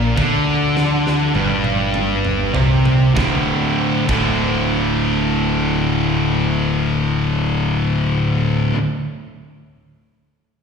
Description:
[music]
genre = stoner and doom metal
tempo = 49 BPM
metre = 4/4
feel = straight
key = unclear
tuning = A4 = 440 Hz
[part]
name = fuzz guitar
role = riff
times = 0.0-8.8 s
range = D2 to D3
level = -21 LUFS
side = right 6 dB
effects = distortion
[part]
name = thick fuzz guitar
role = riff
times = 0.0-8.8 s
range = D2 to D3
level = -19 LUFS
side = left 6 dB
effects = distortion
[part]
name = tight distorted guitar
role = riff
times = 0.0-8.8 s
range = D2 to D3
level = -22 LUFS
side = equal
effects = distortion, slapback echo
[part]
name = growling picked electric bass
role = bass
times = 0.0-8.7 s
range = D1 to D2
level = -25 LUFS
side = equal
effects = overdrive
[part]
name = big rock drum kit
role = drums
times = 0.2-4.4 s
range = crash cymbal, kick drum, snare drum, toms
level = -26 LUFS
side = right 1 dB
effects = none
[sound]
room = studio ambience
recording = live gig heard through the venue's PA, recital hall reverb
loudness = -15 LUFS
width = side -6 dB against mid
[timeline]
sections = 0.0-3.2 A section; 3.2-8.1 B section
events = slowing down 0.0-3.2; drum fill 0.8-3.2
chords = 0.0 G5; 3.2 D5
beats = 0.76 1.95 | 3.17 4.40 5.64 6.87

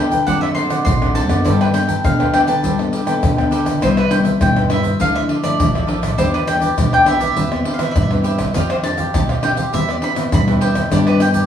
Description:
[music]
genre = samba and choro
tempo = 102 BPM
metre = 4/4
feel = straight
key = C major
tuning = A4 = 440 Hz
[part]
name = bowl-back mandolin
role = melody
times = 0.0-11.5 s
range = B4 to C6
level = -20 LUFS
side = left 1 dB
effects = none
[part]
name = cavaquinho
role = accompaniment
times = 0.0-11.5 s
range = D4 to G5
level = -23 LUFS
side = right 3 dB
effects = none
[part]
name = nylon-string guitar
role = accompaniment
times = 0.0-11.5 s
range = G2 to A4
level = -21 LUFS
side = left 3 dB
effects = none
[part]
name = upright bass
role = bass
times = 0.0-11.4 s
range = A1 to G2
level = -22 LUFS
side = right 1 dB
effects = none
[part]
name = tube shaker, surdo, pandeiro and tamborim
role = percussion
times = 0.1-11.5 s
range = none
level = -19 LUFS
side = left 1 dB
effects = none
[sound]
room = wet large studio reverb, RT60 0.8 s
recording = band playing live in one room, small room ambience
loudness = -14 LUFS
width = side -9 dB against mid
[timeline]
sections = 0.0-11.5 A section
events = none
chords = 0.3 D7/F#; 1.5 Gadd9; 3.8 Cmaj7; 5.0 Dmadd9; 6.2 Em7; 7.4 Cmaj7/E; 8.6 Fsus2; 9.7 Cmaj7/E; 10.9 G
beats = 0.27 0.87 | 1.46 2.05 2.64 3.23 | 3.82 4.42 5.01 5.60 | 6.19 6.78 7.37 7.96 | 8.55 9.14 9.73 10.32 | 10.91

